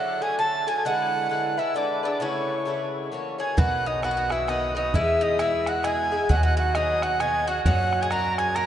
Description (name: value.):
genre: celtic folk, Celtic waltz.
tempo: 132 BPM.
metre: 3/4.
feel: swing 61% on 8ths.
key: A major, B major from 3.6 s.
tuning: A4 = 439 Hz.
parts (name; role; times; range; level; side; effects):
bright baroque flute; melody; 0.0-8.7 s; C#5 to A#5; -25 LUFS; right 2 dB; none.
bowl-back mandolin; second line; 0.0-8.7 s; C#4 to A#4; -33 LUFS; right 2 dB; none.
reedy tin whistle; second line; 0.0-8.7 s; C#6 to A#6; -31 LUFS; left 2 dB; none.
Irish bouzouki; accompaniment; 0.0-8.7 s; A#2 to C#5; -29 LUFS; left 3 dB; none.
upright bass; bass; 3.6-8.7 s; B1 to F#2; -28 LUFS; equal; none.
bodhran; percussion; 3.6-8.7 s; none; -27 LUFS; right 1 dB; none.
room: wet cathedral reverb, RT60 6.7 s.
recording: in a vast, echoing space, nothing above 10.8 kHz.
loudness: -22 LUFS.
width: side -10 dB against mid.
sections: 0.0-3.6 A section; 3.6-8.7 B section.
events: none.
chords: 0.0 D; 0.8 E7; 2.2 Aadd9; 3.1 F#7; 3.6 B; 4.9 E; 6.3 B/D#; 7.7 F#.